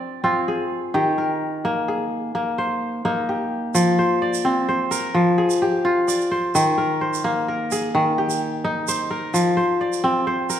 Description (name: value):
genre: west african traditional, West African string and xylophone music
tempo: 86 BPM (dotted quarters)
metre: 12/8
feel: straight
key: F dorian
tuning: A4 = 442 Hz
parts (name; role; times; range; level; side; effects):
- kora; arpeggios; 0.0-10.6 s; Eb3 to D5; -19 LUFS; equal; none
- egg shaker; percussion; 3.8-10.6 s; none; -29 LUFS; right 11 dB; none
room: wet recital hall reverb, RT60 1.6 s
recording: dark, warm production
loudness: -19 LUFS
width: side -10 dB against mid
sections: 0.0-3.8 A section; 3.8-10.6 B section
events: none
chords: 0.0 Fm; 0.9 Eb; 3.8 Fm; 6.5 Eb; 9.3 F5